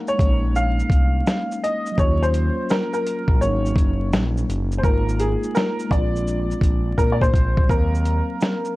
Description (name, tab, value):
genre	lo-fi hip hop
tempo	84 BPM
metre	4/4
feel	swing 66% on 16ths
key	Eb dorian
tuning	A4 = 440 Hz
part	mellow tine electric piano	accompaniment	0.0-8.8 s	Gb3 to F5	-27 LUFS	equal	medium stereo tremolo, low-pass filter
part	bright upright piano	melody	0.1-8.7 s	Ab4 to F5	-25 LUFS	left 1 dB	low-pass filter
part	dusty soul sampler-style drum kit	drums	0.1-8.8 s	hi-hat, kick drum, shaker, snare drum	-20 LUFS	equal	none
part	smooth gliding synth bass	bass	0.2-8.2 s	Gb1 to Bb2	-22 LUFS	equal	none
room	digital ambience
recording	dry, gritty hardware recording, vinyl crackle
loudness	-18 LUFS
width	side -19 dB against mid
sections	0.0-7.7 A section; 7.7-8.8 B section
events	drum fill 7.0-7.7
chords	0.2 Bbm11; 2.0 Ebm7; 3.4 Ab9sus4; 4.8 Bb7sus4/Ab; 5.9 Bb7; 7.7 Ebm69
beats	0.55 1.26 | 1.98 2.69 3.41 4.12 | 4.84 5.55 6.26 6.98 | 7.69 8.41